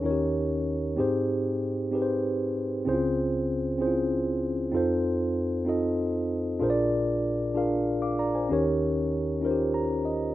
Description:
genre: gospel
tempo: 64 BPM (dotted quarters)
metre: 6/8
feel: straight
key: unclear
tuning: A4 = 440 Hz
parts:
  - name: mellow tine electric piano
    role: solo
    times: 0.0-10.3 s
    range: Bb1 to D6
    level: -24 LUFS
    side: equal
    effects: slow stereo tremolo
room: light reverb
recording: rough home demo mix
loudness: -24 LUFS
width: side -14 dB against mid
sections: 0.0-2.9 A section; 2.9-10.3 B section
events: tine electric piano fill 9.4-10.3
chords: 0.0 Eb7; 1.0 Abmaj7; 2.9 Dbmaj7; 4.7 F7; 6.6 Bb7; 8.5 Eb7

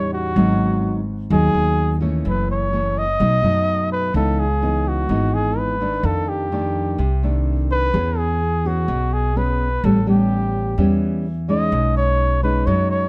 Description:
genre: bossa nova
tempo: 127 BPM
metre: 4/4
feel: straight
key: C# minor from 4.1 s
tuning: A4 = 443 Hz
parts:
  - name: warm flugelhorn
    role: melody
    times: 0.0-13.1 s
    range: F#4 to D#5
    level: -25 LUFS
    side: equal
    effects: none
  - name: nylon-string guitar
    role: accompaniment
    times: 0.0-13.1 s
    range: F2 to G#4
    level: -24 LUFS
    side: equal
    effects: none
  - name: upright bass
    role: bass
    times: 0.0-13.1 s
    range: F#1 to F#2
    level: -24 LUFS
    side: equal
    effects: none
room: light reverb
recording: dark, warm production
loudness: -20 LUFS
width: mono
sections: 0.0-4.1 A section; 4.1-13.1 B section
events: none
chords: 0.4 G#m7; 2.2 F#m7; 3.2 B7; 4.1 C#m9; 6.0 F13; 7.9 E6; 9.8 A9; 11.7 B69

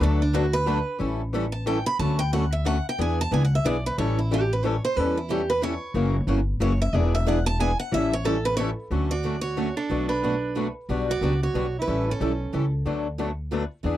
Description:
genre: acoustic string swing (jazz manouche)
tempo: 182 BPM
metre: 3/4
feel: swing 60% on 8ths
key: D major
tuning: A4 = 441 Hz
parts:
  - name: picked steel-string acoustic guitar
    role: melody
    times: 0.0-12.7 s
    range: D4 to B5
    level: -28 LUFS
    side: right 2 dB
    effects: none
  - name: picked steel-string acoustic guitar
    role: accompaniment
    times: 0.0-14.0 s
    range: B2 to B4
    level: -32 LUFS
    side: right 9 dB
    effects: none
  - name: picked swing-style acoustic guitar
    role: accompaniment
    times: 0.0-14.0 s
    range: B2 to B4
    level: -28 LUFS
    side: left 5 dB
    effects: none
  - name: upright bass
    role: bass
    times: 0.0-14.0 s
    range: E1 to E2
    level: -26 LUFS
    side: equal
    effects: none
  - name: breathy soprano saxophone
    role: second line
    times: 9.1-12.7 s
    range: C#4 to F#4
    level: -30 LUFS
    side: right 4 dB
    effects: none
room: little or no reverb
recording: dry, close 1970s-style studio recording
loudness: -22 LUFS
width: side -13 dB against mid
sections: 0.0-1.0 A section; 1.0-8.9 A section; 8.9-14.0 B section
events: steel-string acoustic guitar solo 0.0-8.9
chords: 0.0 D6; 1.0 A7; 2.0 Dmaj7; 3.0 E7; 4.0 A7; 6.0 F#7; 6.9 E7; 7.9 A7; 8.9 Dmaj7; 9.9 Bm7; 10.9 Gmaj7/B; 11.9 A7; 12.9 D6

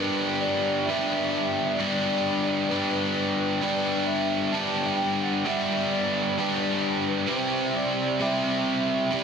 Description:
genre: rock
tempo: 131 BPM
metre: 4/4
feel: straight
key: G major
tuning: A4 = 440 Hz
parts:
  - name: vibraphone with soft mallets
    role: melody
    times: 0.0-9.2 s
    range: B4 to A5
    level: -30 LUFS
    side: right 2 dB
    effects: analog delay
  - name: biting overdriven guitar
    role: riff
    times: 0.0-9.2 s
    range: G2 to G4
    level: -24 LUFS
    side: equal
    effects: wide subtle chorus
room: light reverb, studio reverb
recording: dense, heavily limited modern master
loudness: -23 LUFS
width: side -6 dB against mid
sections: 0.0-9.2 A section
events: none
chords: 0.0 G6; 7.3 C

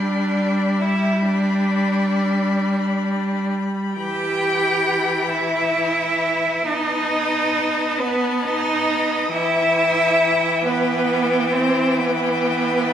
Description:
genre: classical, slow romantic movement for string quartet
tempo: 45 BPM (dotted quarters)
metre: 12/8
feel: rubato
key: unclear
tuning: A4 = 440 Hz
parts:
  - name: rich violin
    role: melody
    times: 0.0-12.9 s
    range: G5 to B5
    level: -29 LUFS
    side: left 8 dB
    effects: none
  - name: clear violin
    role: second line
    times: 0.0-12.9 s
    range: B4 to G5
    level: -24 LUFS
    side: left 4 dB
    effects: none
  - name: clear viola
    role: accompaniment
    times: 0.0-12.9 s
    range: E3 to B3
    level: -22 LUFS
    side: equal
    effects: none
  - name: bright cello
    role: bass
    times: 0.0-12.9 s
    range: B3 to G4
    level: -22 LUFS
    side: right 3 dB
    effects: none
room: wet recital hall reverb, RT60 1.4 s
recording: heard from further back in the room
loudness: -17 LUFS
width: side -9 dB against mid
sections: 0.0-12.9 A section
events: none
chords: 0.0 G; 4.0 Em; 6.7 B7; 9.3 Em

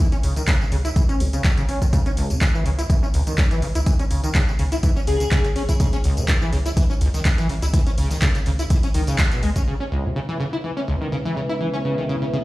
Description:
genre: acid house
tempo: 124 BPM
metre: 4/4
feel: swing 54% on 16ths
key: C# minor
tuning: A4 = 440 Hz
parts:
  - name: liquid acid bass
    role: riff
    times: 0.0-12.4 s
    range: C#2 to E4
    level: -25 LUFS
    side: equal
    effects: lush chorus, sidechain pumping, tape echo
  - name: warm sub bass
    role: bass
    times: 0.0-9.7 s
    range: G#1 to C#2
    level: -22 LUFS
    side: equal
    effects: sidechain pumping
  - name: punchy analog drum machine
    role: drums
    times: 0.0-9.7 s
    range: handclaps, hi-hat, tambourine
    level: -28 LUFS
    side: equal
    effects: overdrive
  - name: electronic kick drum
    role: drums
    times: 0.5-9.6 s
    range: none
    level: -18 LUFS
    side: equal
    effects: overdrive
  - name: airy dreamy lead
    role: melody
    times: 5.1-5.4 s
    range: G#4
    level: -28 LUFS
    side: left 4 dB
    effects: chorus, vintage 12-bit sampler grit, tape echo
  - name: dark analog pad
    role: sustained chords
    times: 9.7-12.4 s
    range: C#3 to E5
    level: -29 LUFS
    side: equal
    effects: chorus, sidechain pumping
  - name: deep dark ambient pad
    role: texture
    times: 10.6-12.4 s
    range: C#4 to E5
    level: -28 LUFS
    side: equal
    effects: chorus, built-in reverb, sidechain pumping
room: light reverb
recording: played on a big sound system in a bare room, stone room reverb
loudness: -18 LUFS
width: side -18 dB against mid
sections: 0.0-9.7 A section; 9.7-12.4 B section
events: band accent 9.2; filter sweep on analog synth pad 9.7-12.4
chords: 0.0 C#m; 9.7 C#m7

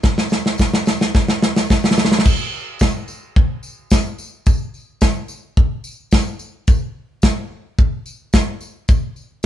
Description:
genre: folk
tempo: 109 BPM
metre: 4/4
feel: straight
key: none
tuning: none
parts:
  - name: natural country drum kit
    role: drums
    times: 0.0-9.0 s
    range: crash cymbal, kick drum, snare drum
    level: -14 LUFS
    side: equal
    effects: none
  - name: tambourine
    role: percussion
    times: 0.0-9.5 s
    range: none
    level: -36 LUFS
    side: left 2 dB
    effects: none
room: light reverb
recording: band playing live in one room, nothing above 10.8 kHz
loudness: -16 LUFS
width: side -11 dB against mid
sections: 0.0-2.3 A section; 2.3-9.5 B section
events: build-up 0.0-2.3; drum fill 0.0-2.3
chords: none

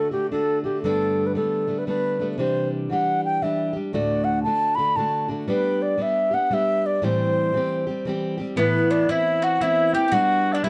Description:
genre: celtic folk, Celtic waltz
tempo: 116 BPM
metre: 3/4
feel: swing 63% on 8ths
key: A dorian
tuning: A4 = 440 Hz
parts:
  - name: baroque flute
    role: melody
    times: 0.0-10.7 s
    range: G4 to B5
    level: -24 LUFS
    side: equal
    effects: plate reverb
  - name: fingerpicked plugged-in steel-string acoustic guitar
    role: accompaniment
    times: 0.0-10.7 s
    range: D2 to G4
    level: -27 LUFS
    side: equal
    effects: none
  - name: bowl-back mandolin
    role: second line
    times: 8.6-10.7 s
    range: B3 to G4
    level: -32 LUFS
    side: equal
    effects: none
  - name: mellow small bagpipes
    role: second line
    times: 8.6-10.7 s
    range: B3 to A4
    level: -31 LUFS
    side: equal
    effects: none
room: moderate small room reverb, RT60 0.6 s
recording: dark, warm production, nothing above 10.8 kHz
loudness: -23 LUFS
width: mono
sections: 0.0-8.6 A section; 8.6-10.7 A section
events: none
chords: 0.0 D; 0.8 Gadd9; 2.4 Cadd9; 3.9 D; 5.5 G; 7.0 Am7; 8.6 Amadd9; 10.1 G

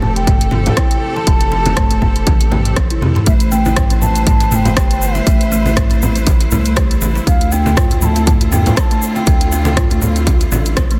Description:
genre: afro house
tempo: 120 BPM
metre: 4/4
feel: swing 56% on 16ths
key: A minor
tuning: A4 = 440 Hz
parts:
  - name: mellow bansuri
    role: melody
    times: 0.0-10.1 s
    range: E5 to B5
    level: -24 LUFS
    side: equal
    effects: digital delay
  - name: clear symphonic string section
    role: sustained chords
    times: 0.0-11.0 s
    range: D3 to C5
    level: -26 LUFS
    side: equal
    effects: sidechain pumping
  - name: round analog bass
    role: bass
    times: 0.0-11.0 s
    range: F1 to F2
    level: -20 LUFS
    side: equal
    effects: sidechain pumping
  - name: congas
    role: percussion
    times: 0.0-10.9 s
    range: none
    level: -23 LUFS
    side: equal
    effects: none
  - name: buzzing kalimba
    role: arpeggios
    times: 0.2-11.0 s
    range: C3 to C5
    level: -24 LUFS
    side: equal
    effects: sidechain pumping, digital delay
  - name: house drum kit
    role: drums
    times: 0.2-11.0 s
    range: hi-hat, rim click, toms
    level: -22 LUFS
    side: equal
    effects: overdrive
  - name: electronic kick drum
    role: drums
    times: 0.3-10.9 s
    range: none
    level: -16 LUFS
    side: equal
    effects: overdrive
  - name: egg shaker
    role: percussion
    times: 3.3-11.0 s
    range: none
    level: -30 LUFS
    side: equal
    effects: none
room: small room ambience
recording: dense, heavily limited modern master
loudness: -14 LUFS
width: mono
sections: 0.0-11.0 A section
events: drum fill 2.9-3.3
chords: 0.0 Fmaj7; 3.3 Am7; 7.3 Dm

